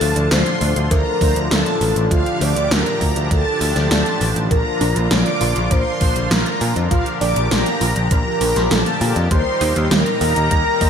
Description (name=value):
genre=synthwave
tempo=100 BPM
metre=4/4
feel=straight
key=unclear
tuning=A4 = 439 Hz
part: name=warm velvety synth lead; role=melody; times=0.0-10.9 s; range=F4 to D5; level=-22 LUFS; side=equal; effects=chorus, ping-pong delay
part: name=string machine, violins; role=second line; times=0.0-10.9 s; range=F5 to D6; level=-25 LUFS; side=equal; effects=ensemble chorus, digital delay
part: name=warm analog pad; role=sustained chords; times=0.0-10.9 s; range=A2 to G4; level=-26 LUFS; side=left 1 dB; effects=chorus, tremolo, sidechain pumping
part: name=mellow synth brass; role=stabs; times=0.0-10.9 s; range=F3 to C5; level=-27 LUFS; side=left 1 dB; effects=chorus, digital delay
part: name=picked electric bass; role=bass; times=0.0-10.9 s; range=A1 to Bb2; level=-20 LUFS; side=equal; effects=sidechain pumping
part: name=80s electronic pad drums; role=drums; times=0.0-10.9 s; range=hi-hat, snare drum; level=-22 LUFS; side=equal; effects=overdrive, gated reverb
part: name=electronic kick drum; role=drums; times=0.9-10.9 s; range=none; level=-18 LUFS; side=equal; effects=none
part: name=wide unison pluck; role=arpeggios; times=4.5-10.9 s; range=F3 to G4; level=-28 LUFS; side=right 4 dB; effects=none
room=moderate lush hall reverb, RT60 1.9 s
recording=bright 1980s-style digital production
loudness=-15 LUFS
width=side -7 dB against mid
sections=0.0-10.9 A section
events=none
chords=0.0 Dm; 4.5 Bb; 9.3 Eb